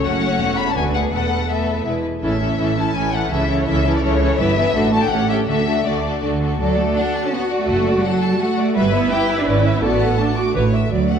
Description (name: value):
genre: quick classical-period movement for string orchestra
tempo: 166 BPM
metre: 3/4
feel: straight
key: A major, D major from 4.4 s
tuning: A4 = 440 Hz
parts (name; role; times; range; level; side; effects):
- rich chamber violin section; melody; 0.0-10.7 s; E4 to B5; -24 LUFS; left 6 dB; none
- rich symphonic violin section; second line; 0.0-11.2 s; E4 to D6; -23 LUFS; left 2 dB; none
- rich chamber viola section; accompaniment; 0.0-11.2 s; E3 to B4; -22 LUFS; right 1 dB; none
- clear chamber double bass section; bass; 0.0-11.2 s; E1 to D2; -22 LUFS; right 2 dB; none
- rich studio cello section; bass; 0.0-11.2 s; D2 to E4; -22 LUFS; right 3 dB; none
room: moderate concert hall reverb, RT60 2.1 s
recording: dark, warm production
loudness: -16 LUFS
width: side -7 dB against mid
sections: 0.0-6.6 A section; 6.6-11.2 B section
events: none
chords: 0.1 F#m; 0.8 Bm7/D; 1.1 Esus4; 1.9 E; 2.2 A; 3.3 A/C#; 4.4 Em/G; 4.7 D/A; 5.1 A7; 5.5 D; 7.7 D/F#; 8.8 Em/G; 9.5 E7/G#; 9.8 D/A; 10.6 A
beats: | 0.05 0.41 0.77 | 1.13 1.50 1.86 | 2.23 2.59 2.95 | 3.31 3.68 4.03 | 4.39 4.75 5.11 | 5.48 5.85 6.23 | 6.60 6.97 7.33 | 7.69 8.04 8.40 | 8.76 9.11 9.47 | 9.83 10.20 10.56 | 10.93